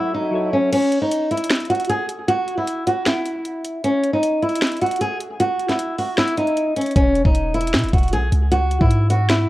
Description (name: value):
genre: hip hop, trap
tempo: 154 BPM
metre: 4/4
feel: half-time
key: E major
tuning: A4 = 440 Hz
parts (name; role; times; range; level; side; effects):
- flamenco guitar; melody; 0.0-9.5 s; C#4 to G#4; -19 LUFS; equal; low-pass filter, tape echo
- soft electric-piano-like synth keys; accompaniment; 0.0-0.7 s; F#3 to C#5; -26 LUFS; equal; chorus, low-pass filter
- swell; sound effects; 0.1-0.7 s; none; -32 LUFS; left 2 dB; none
- trap drum kit; drums; 0.7-9.4 s; crash cymbal, finger snaps, hi-hat, kick drum, snare drum; -21 LUFS; equal; none
- warm 808-style bass; bass; 7.0-9.5 s; E1 to B2; -19 LUFS; equal; none
room: light reverb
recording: worn, warbling old tape, cassette tape, warbly pitch drift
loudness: -17 LUFS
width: side -17 dB against mid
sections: 0.7-9.5 A section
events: kick muted 0.7-7.0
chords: 0.0 F#m; 0.7 N.C.; 7.0 E5; 8.5 C#m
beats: 0.34 | 0.72 1.11 1.50 1.89 | 2.28 2.67 3.06 3.45 | 3.84 4.23 4.62 5.01 | 5.40 5.79 6.18 6.57 | 6.96 7.35 7.74 8.13 | 8.52 8.91 9.30